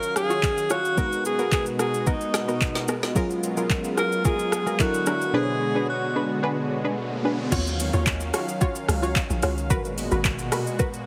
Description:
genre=amapiano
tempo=110 BPM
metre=4/4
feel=straight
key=unclear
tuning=A4 = 439 Hz
part: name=breathy alto saxophone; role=melody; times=0.0-6.4 s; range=D#4 to A#4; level=-28 LUFS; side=equal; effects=digital delay
part: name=FM electric piano with soft pad layer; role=accompaniment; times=0.0-7.5 s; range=B2 to E#5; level=-33 LUFS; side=equal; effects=chorus
part: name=lush unison pad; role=sustained chords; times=0.0-11.1 s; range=A#2 to E#5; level=-33 LUFS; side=equal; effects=chorus, sidechain pumping
part: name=punchy chord stab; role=stabs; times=0.0-10.9 s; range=F#3 to C#5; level=-32 LUFS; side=equal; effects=chorus, digital delay
part: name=smooth R&B drum kit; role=drums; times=0.0-11.1 s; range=crash cymbal, handclaps, hi-hat, kick drum, rim click, shaker, snare drum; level=-28 LUFS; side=equal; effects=none
part: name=riser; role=sound effects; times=6.8-7.5 s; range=none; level=-37 LUFS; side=equal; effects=none
part: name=tight log drum bass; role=bass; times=7.5-10.5 s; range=G#1 to D#2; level=-29 LUFS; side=equal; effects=none
room=light reverb, digital ambience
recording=heavily compressed radio sound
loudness=-24 LUFS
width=mono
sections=0.0-7.5 A section; 7.5-11.1 B section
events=riser 6.8-7.5; drop 7.5-11.1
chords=0.0 D#m9; 1.0 G#m9; 3.2 F#maj9; 4.8 F#7alt; 5.3 Bm6; 7.5 D#m9; 9.7 G#m9

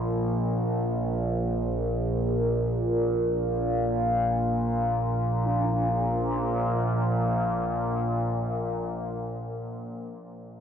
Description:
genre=dark ambient drone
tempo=free time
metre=none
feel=none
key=unclear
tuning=A4 = 439 Hz
part: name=overtone-sweeping drone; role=solo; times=0.0-9.2 s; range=Bb1 to Bb2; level=-25 LUFS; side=equal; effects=chorus, built-in reverb, tape echo
room=wet cathedral reverb, RT60 5.7 s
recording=worn, warbling old tape, cassette tape, warbly pitch drift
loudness=-24 LUFS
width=side -8 dB against mid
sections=0.0-5.5 A section; 5.5-9.8 B section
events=none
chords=none

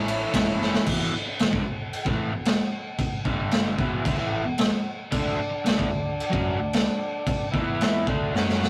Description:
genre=garage rock duo or trio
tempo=112 BPM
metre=4/4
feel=straight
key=unclear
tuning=A4 = 440 Hz
part: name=combo organ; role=sustained chords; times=0.0-0.8, 5.1-8.7 s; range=C#4 to E5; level=-34 LUFS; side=equal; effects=none
part: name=crunchy overdriven guitar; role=riff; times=0.0-8.7 s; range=E2 to F#4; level=-30 LUFS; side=equal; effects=none
part: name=hollow-body short-scale fingered electric bass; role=bass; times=0.0-8.7 s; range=E1 to F#2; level=-37 LUFS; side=equal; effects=none
part: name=raw garage drum kit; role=drums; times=0.1-8.7 s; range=crash cymbal, kick drum, ride cymbal, snare drum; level=-27 LUFS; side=equal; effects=none
room=light reverb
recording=rough rehearsal-room recording, warm saturation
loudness=-25 LUFS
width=mono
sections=0.9-8.7 A section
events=drum fill 0.6, 8.3-8.7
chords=0.0 A; 0.9 E5; 3.3 G5; 3.8 E5; 5.1 D5; 7.5 E5; 8.1 D5

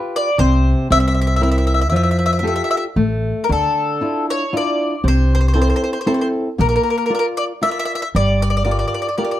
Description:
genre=italian folk, Italian serenade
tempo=116 BPM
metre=3/4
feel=straight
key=F major, D minor from 3.5 s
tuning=A4 = 440 Hz
part: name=bowl-back mandolin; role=melody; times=0.0-9.4 s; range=A4 to E5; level=-19 LUFS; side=left 1 dB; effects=plate reverb
part: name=flamenco guitar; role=accompaniment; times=0.0-9.4 s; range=C3 to D5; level=-20 LUFS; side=equal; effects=none
part: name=upright bass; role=bass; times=0.4-8.8 s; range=G1 to F2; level=-17 LUFS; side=equal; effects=none
room=light reverb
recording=dark, warm production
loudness=-15 LUFS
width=side -13 dB against mid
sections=0.0-3.5 A section; 3.5-9.4 B section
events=none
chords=0.4 N.C.; 0.9 C7; 1.9 Fadd9; 3.0 N.C.; 3.5 Dmadd9; 5.0 Am/C; 6.6 Bb; 8.1 Gm7

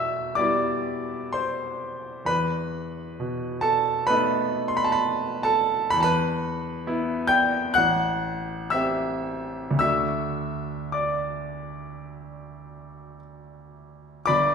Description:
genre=classical, romantic nocturne for solo piano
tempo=52-67 BPM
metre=4/4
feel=rubato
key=unclear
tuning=A4 = 440 Hz
part: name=clear grand piano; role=solo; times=0.0-14.5 s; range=G1 to G6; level=-23 LUFS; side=equal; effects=none
room=wet recital hall reverb, RT60 1.3 s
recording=minimal, uncompressed stereo recording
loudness=-22 LUFS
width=side -6 dB against mid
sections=0.0-14.3 A section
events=none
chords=0.0 Em; 2.3 B7/E; 5.9 Em; 7.8 Am7; 9.8 D

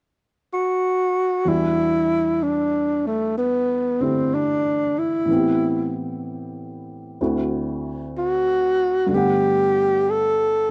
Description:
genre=jazz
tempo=63 BPM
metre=4/4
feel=swing 66% on 8ths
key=E minor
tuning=A4 = 440 Hz
part: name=breathy tenor saxophone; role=melody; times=0.5-10.7 s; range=A3 to A4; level=-21 LUFS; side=equal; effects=none
part: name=dark upright piano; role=accompaniment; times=1.5-10.7 s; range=D2 to F#5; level=-28 LUFS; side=equal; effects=none
room=small room reverb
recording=dry, close 1970s-style studio recording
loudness=-21 LUFS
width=mono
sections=0.0-1.5 A section; 1.5-10.7 B section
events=none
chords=0.0 N.C.; 1.5 Em9; 5.3 Am7; 7.2 D9; 9.1 Gmaj9

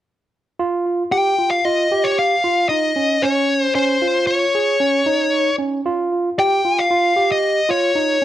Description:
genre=progressive instrumental, progressive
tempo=114 BPM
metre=5/4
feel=straight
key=Db lydian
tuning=A4 = 440 Hz
part: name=barky tine electric piano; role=arpeggios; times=0.6-8.2 s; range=Db4 to Ab4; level=-20 LUFS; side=right 4 dB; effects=analog delay
part: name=dark smooth lead guitar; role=melody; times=1.1-8.2 s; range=C5 to G5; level=-16 LUFS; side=left 2 dB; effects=overdrive
room=moderate studio reverb, RT60 0.8 s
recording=none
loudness=-15 LUFS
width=side -12 dB against mid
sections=0.6-8.2 A section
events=none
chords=0.6 Dbadd9

